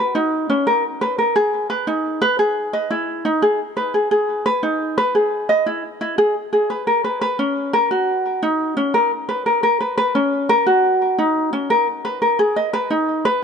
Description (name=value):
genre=folktronica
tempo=87 BPM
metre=4/4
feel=straight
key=B major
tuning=A4 = 444 Hz
part: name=ukulele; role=solo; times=0.0-13.4 s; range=C#4 to D#5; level=-16 LUFS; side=equal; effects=vintage 12-bit sampler grit, ping-pong delay
room=moderate echo chamber reverb, RT60 2.4 s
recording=none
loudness=-16 LUFS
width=side -6 dB against mid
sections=0.0-13.4 A section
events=none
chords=none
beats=0.67 | 1.36 2.04 2.73 3.42 | 4.11 4.80 5.49 6.18 | 6.87 7.56 8.25 8.94 | 9.63 10.32 11.01 11.70 | 12.39 13.08